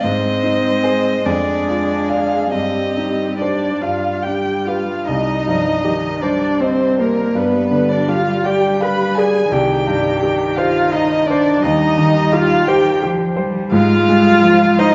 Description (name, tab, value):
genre	classical, slow romantic movement for piano quintet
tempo	46-58 BPM (dotted quarters)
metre	6/8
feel	rubato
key	C minor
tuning	A4 = 440 Hz
part	rich violin	melody	0.0-14.9 s	Bb4 to B5	-25 LUFS	equal	none
part	rich cello	second line	0.0-14.9 s	Eb3 to Ab3	-25 LUFS	equal	none
part	rich violin	second line	0.0-14.9 s	G4 to B5	-26 LUFS	equal	none
part	bright baby grand piano	accompaniment	0.0-14.9 s	C2 to F5	-22 LUFS	equal	none
part	rich viola	accompaniment	0.0-14.9 s	Bb3 to B4	-20 LUFS	equal	none
room	wet scoring stage reverb, RT60 1.6 s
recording	dark, warm production, nothing above 7.7 kHz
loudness	-16 LUFS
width	mono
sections	0.0-5.1 A section; 5.1-14.9 B section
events	none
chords	0.1 Ab; 1.3 Ddim/F; 2.5 Cm/G; 3.8 G; 5.1 Cm; 7.4 G5; 9.5 Cm; 11.6 Cm/Eb; 13.7 Fm/Ab